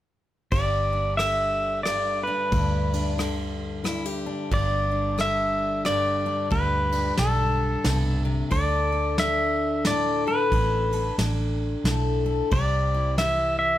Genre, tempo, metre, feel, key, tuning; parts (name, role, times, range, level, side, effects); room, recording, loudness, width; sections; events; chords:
honky-tonk and classic country; 90 BPM; 3/4; swing 61% on 8ths; G major; A4 = 440 Hz
pedal steel guitar; melody; 0.5-13.8 s; A4 to E5; -24 LUFS; equal
picked steel-string acoustic guitar; accompaniment; 0.5-13.8 s; G2 to A4; -28 LUFS; left 3 dB
vintage muted fingered electric bass; bass; 0.5-13.8 s; G1 to D2; -27 LUFS; right 1 dB
soft brush drum kit; drums; 0.5-13.4 s; kick drum, ride cymbal, rim click, snare drum; -31 LUFS; right 1 dB
moderate studio ambience, RT60 0.5 s; -22 LUFS; side -13 dB against mid
0.5-13.8 A section
0.5 G5; 8.5 D5; 12.5 C